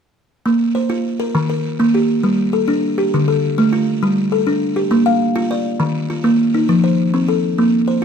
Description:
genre	southern african traditional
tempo	135 BPM (dotted quarters)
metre	12/8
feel	straight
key	Bb major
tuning	A4 = 439 Hz
part	buzzing kalimba	arpeggios	0.5-8.0 s	D3 to F5	-14 LUFS	equal	none
room	light reverb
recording	close, detailed microphones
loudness	-14 LUFS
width	side -7 dB against mid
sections	0.4-8.0 A section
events	none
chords	0.4 Bb5; 1.3 Eb; 2.2 G5; 3.1 Dm; 4.0 G5; 4.9 Bb; 5.8 Eb5; 6.7 F

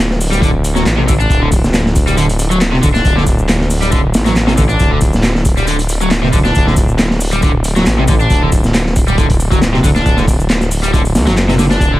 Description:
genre	breakbeat, breaks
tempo	137 BPM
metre	4/4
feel	swing 54% on 16ths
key	unclear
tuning	A4 = 439 Hz
part	detuned saw bass	bass	0.0-12.0 s	D1 to D2	-15 LUFS	equal	none
part	crunchy breakbeat drum kit	drums	0.1-11.9 s	hi-hat, kick drum, snare drum	-13 LUFS	equal	none
part	house drum kit	drums	0.2-11.9 s	handclaps, hi-hat, shaker	-23 LUFS	equal	none
part	crunchy overdriven guitar	riff	0.3-12.0 s	C3 to D4	-17 LUFS	equal	dub echo
room	small room reverb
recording	vinyl crackle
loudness	-10 LUFS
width	side -16 dB against mid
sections	0.0-12.0 A section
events	none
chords	none

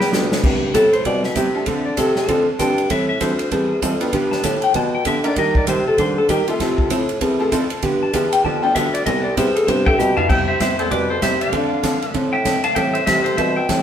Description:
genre	country, western swing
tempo	195 BPM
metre	4/4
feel	swing 61% on 8ths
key	C major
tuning	A4 = 436 Hz
part	pedal steel guitar	melody	0.0-0.1, 9.9-13.8 s	A4 to A5	-19 LUFS	left 1 dB	none
part	hollow-body jazz guitar	accompaniment	0.0-13.8 s	C3 to A4	-23 LUFS	right 2 dB	none
part	tack piano	accompaniment	0.0-12.9 s	G3 to E5	-27 LUFS	equal	none
part	mellow bassoon	bass	0.0-13.8 s	C2 to Eb3	-22 LUFS	equal	none
part	swinging big-band drum kit	drums	0.0-13.8 s	crash cymbal, hi-hat, kick drum, ride cymbal, snare drum, toms	-24 LUFS	equal	none
part	clean lap steel guitar	second line	0.7-10.3 s	E4 to A5	-20 LUFS	left 2 dB	none
room	wet stone room reverb, RT60 1.0 s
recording	band playing live in one room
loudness	-16 LUFS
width	side -9 dB against mid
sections	0.4-10.3 A section; 10.3-13.8 B section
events	drum fill 0.0-0.4, 10.0-10.3; electric slide guitar solo 0.4-10.3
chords	0.4 Cmaj7; 1.7 Dm7; 2.9 Am7; 4.1 G7; 5.4 Ebmaj7; 6.6 Fmaj7; 7.8 G7; 9.1 Cmaj7; 11.5 Dm7; 12.8 Am7

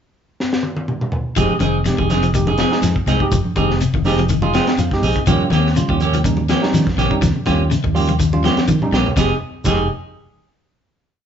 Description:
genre	afrobeat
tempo	123 BPM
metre	4/4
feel	swing 54% on 16ths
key	F minor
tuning	A4 = 440 Hz
part	crunchy breakbeat drum kit	drums	0.4-9.8 s	crash cymbal, hi-hat, kick drum, snare drum, toms	-21 LUFS	left 1 dB	none
part	tine electric piano	accompaniment	1.4-9.9 s	G3 to G5	-24 LUFS	right 3 dB	none
part	electric guitar at the edge of break-up	arpeggios	1.4-9.8 s	C3 to Ab3	-23 LUFS	left 7 dB	none
part	semi-hollow electric guitar	stabs	1.4-9.9 s	Bb3 to Ab4	-22 LUFS	right 4 dB	none
part	fingered electric bass	bass	1.4-9.9 s	F1 to Eb3	-20 LUFS	equal	none
part	congas	percussion	1.4-9.8 s	none	-25 LUFS	right 2 dB	none
part	shekere	percussion	1.4-9.8 s	none	-28 LUFS	left 1 dB	none
room	moderate large studio reverb, RT60 0.9 s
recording	band playing live in one room, nothing above 7.7 kHz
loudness	-15 LUFS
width	side -8 dB against mid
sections	0.0-1.4 pickup bar; 1.4-9.2 groove; 9.2-11.1 final chord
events	drum fill 0.4-1.4, 8.6-9.2; tine electric piano fill 4.3-5.3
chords	0.0 N.C.; 1.4 Fm7; 5.3 Eb7; 9.2 Fm7

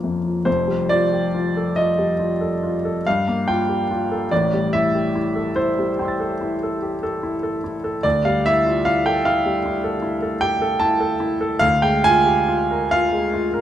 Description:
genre	classical, impressionist solo piano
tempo	45-52 BPM (dotted quarters)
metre	9/8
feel	rubato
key	F major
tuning	A4 = 440 Hz
part	clear grand piano	solo	0.0-13.6 s	F1 to Bb6	-18 LUFS	equal	none
room	moderate recital hall reverb, RT60 1.3 s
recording	close, detailed microphones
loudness	-18 LUFS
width	side -11 dB against mid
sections	0.5-13.6 A section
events	none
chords	0.5 Fadd9; 3.1 Gm9; 4.3 Am7; 8.0 Dmadd9; 11.6 Bb5/D

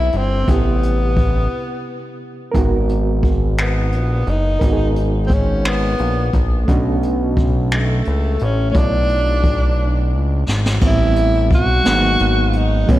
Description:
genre	slow six-eight R&B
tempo	58 BPM (dotted quarters)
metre	6/8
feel	straight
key	unclear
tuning	A4 = 441 Hz
part	breathy tenor saxophone	melody	0.0-13.0 s	A3 to F#4	-21 LUFS	equal	ping-pong delay
part	overdriven reed electric piano	accompaniment	0.0-13.0 s	C3 to C#5	-23 LUFS	right 3 dB	fast tremolo
part	fat analog bass	bass	0.0-13.0 s	F#1 to C#2	-18 LUFS	equal	none
part	jazz brush drum kit	drums	0.1-13.0 s	crash cymbal, finger snaps, hi-hat, kick drum, snare drum	-19 LUFS	equal	none
room	light reverb, studio ambience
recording	none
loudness	-14 LUFS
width	side -15 dB against mid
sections	0.0-10.8 A section; 10.8-13.0 B section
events	break 1.5-2.5; drum fill 9.8-10.8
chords	0.0 Am9; 2.5 G#m9; 6.7 Bm9; 10.8 Am9; 11.9 G#m9

